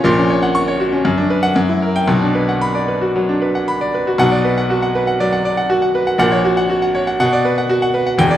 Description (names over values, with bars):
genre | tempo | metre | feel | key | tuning
classical, virtuoso piano study | 119 BPM | 4/4 | rubato | B minor | A4 = 440 Hz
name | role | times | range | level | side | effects
bright grand piano | solo | 0.0-8.4 s | E1 to C#6 | -13 LUFS | equal | none
room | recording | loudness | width
moderate recital hall reverb, RT60 1.4 s | none | -14 LUFS | side -12 dB against mid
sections
0.0-4.2 A section; 4.2-8.4 B section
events
none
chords
0.0 F#/A#; 1.1 Bm/F#; 1.6 F#7b9; 2.1 Bm; 6.2 F#/A#; 7.2 Bm